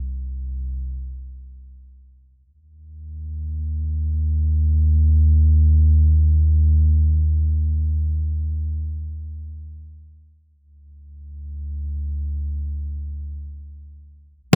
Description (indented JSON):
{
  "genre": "ambient",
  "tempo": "free time",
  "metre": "none",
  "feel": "none",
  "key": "unclear",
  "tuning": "A4 = 435 Hz",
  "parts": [
    { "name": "deep rumbling drone", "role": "bass", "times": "0.0-14.6 s", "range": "Bb1 to Eb2", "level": "-19 LUFS", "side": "equal", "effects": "built-in reverb" }
  ],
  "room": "little or no reverb",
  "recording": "dark, warm production",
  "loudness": "-18 LUFS",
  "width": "side -26 dB against mid",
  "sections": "0.0-9.9 A section; 9.9-14.6 B section",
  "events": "none",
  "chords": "none"
}